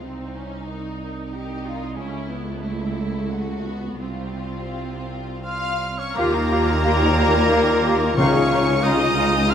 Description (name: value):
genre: cinematic, emotional film score for orchestra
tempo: 83-94 BPM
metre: 3/4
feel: rubato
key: unclear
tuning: A4 = 440 Hz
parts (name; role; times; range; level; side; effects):
- warm studio violin section; melody; 0.0-9.5 s; G4 to F6; -29 LUFS; left 3 dB; none
- rich studio violin section; second line; 0.0-9.5 s; Eb4 to F5; -28 LUFS; left 3 dB; none
- rich studio viola section; accompaniment; 0.0-9.5 s; A3 to Ab4; -28 LUFS; equal; none
- rich studio cello section; bass; 0.0-9.5 s; C2 to Eb2; -26 LUFS; right 1 dB; none
- mellow cor anglais; second line; 5.5-9.5 s; Bb3 to F4; -24 LUFS; right 2 dB; none
- flute section; second line; 6.2-9.5 s; F5; -30 LUFS; right 2 dB; none
- mellow clarinet; second line; 6.2-9.5 s; Eb4 to G4; -29 LUFS; right 2 dB; none
- mellow French horn section; sustained chords; 6.2-9.5 s; G3 to F4; -26 LUFS; left 4 dB; none
- rich studio double bass section; bass; 6.2-9.5 s; Db2 to Eb2; -27 LUFS; right 2 dB; none
- timpani; percussion; 8.2-9.1 s; Db3; -24 LUFS; left 1 dB; none
room: wet scoring stage reverb, RT60 1.7 s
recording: none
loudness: -19 LUFS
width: side -8 dB against mid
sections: 0.0-6.2 A section; 6.2-9.5 B section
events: none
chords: 0.0 Cm7; 2.0 Aadd9/C#; 4.0 Fsus2/C; 6.2 Ebadd9; 8.2 Dbadd9